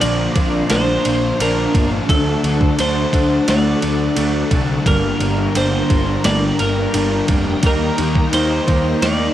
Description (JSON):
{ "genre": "rock, shoegaze and dream pop", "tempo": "87 BPM", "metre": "4/4", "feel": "straight", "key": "G minor", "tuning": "A4 = 440 Hz", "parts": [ { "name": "twelve-string electric guitar", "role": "melody", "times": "0.0-9.3 s", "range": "A4 to D5", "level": "-22 LUFS", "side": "right 1 dB", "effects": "cassette tape, analog delay" }, { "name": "string machine, full ensemble", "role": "sustained chords", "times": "0.0-9.3 s", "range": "D4 to Bb5", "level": "-22 LUFS", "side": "right 1 dB", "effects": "ensemble chorus, cassette tape" }, { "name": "crunchy overdriven guitar", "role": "riff", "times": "0.0-9.3 s", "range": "G2 to Eb4", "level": "-26 LUFS", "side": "right 9 dB", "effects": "reverse reverb, cassette tape" }, { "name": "thick fuzz guitar", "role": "riff", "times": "0.0-9.3 s", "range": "G2 to Eb4", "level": "-22 LUFS", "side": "left 7 dB", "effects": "distortion, ensemble chorus, cassette tape" }, { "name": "fuzz picked electric bass", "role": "bass", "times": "0.0-9.3 s", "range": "F1 to Eb2", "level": "-21 LUFS", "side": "equal", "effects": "overdrive" }, { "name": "clean 12-bit digital drum machine", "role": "drums", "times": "0.0-9.2 s", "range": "kick drum, ride cymbal, snare drum", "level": "-20 LUFS", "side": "equal", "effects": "overdrive, cassette tape" } ], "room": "little or no reverb", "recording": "home recording on cassette", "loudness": "-14 LUFS", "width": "side -12 dB against mid", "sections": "0.0-9.3 A section", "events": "none", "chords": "0.0 Bbadd9; 2.1 D; 4.9 Gm; 7.6 Eb" }